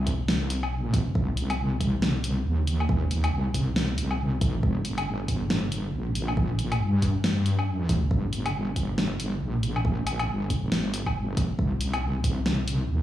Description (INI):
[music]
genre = deep dubstep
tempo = 138 BPM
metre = 4/4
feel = swing 59% on 16ths, half-time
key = unclear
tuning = A4 = 440 Hz
[part]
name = wobble bass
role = bass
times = 0.0-13.0 s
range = G1 to G2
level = -26 LUFS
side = equal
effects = chorus
[part]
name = deep house drum kit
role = drums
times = 0.1-12.8 s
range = hi-hat, snare drum, woodblock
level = -30 LUFS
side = equal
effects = none
[part]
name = electronic kick drum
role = drums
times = 0.1-12.3 s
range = none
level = -27 LUFS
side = equal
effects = none
[sound]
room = little or no reverb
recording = played on a big sound system in a bare room, large studio reverb, small room ambience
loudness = -24 LUFS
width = side -13 dB against mid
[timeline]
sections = 0.0-13.0 A section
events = none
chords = none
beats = 0.28 0.72 | 1.15 1.59 2.02 2.46 | 2.89 3.33 3.76 4.20 | 4.63 5.07 5.50 5.93 | 6.37 6.80 7.24 7.67 | 8.11 8.54 8.98 9.41 | 9.85 10.28 10.72 11.15 | 11.59 12.02 12.46 12.89